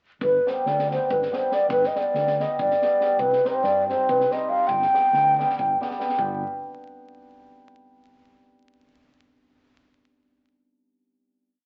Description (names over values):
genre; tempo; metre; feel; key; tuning
balkan folk, Balkan wedding band; 281 BPM (eighths); 7/8; straight; G major; A4 = 440 Hz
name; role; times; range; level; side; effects
breathy mellow low ney; melody; 0.2-5.8 s; B4 to G5; -23 LUFS; equal; none
overdriven fingered electric bass; bass; 0.2-6.4 s; G1 to G2; -37 LUFS; equal; none
compact cocktail drum kit; percussion; 0.2-6.4 s; kick drum, snare drum; -40 LUFS; equal; none
cimbalom; accompaniment; 0.5-6.4 s; G3 to G4; -29 LUFS; equal; none
room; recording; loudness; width
moderate studio reverb, RT60 0.8 s; very old 78 rpm record, vinyl crackle, nothing above 7.9 kHz; -22 LUFS; mono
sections
0.2-6.2 A section; 6.2-7.7 final chord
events
none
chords
0.2 G; 3.2 Cm; 4.7 G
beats
| 0.21 0.43 0.64 0.85 1.06 1.28 1.49 | 1.70 1.92 2.13 2.34 2.56 2.77 2.98 | 3.20 3.41 3.63 3.84 4.05 4.27 4.48 | 4.70 4.91 5.12 5.34 5.55 5.76 5.98 | 6.19 6.41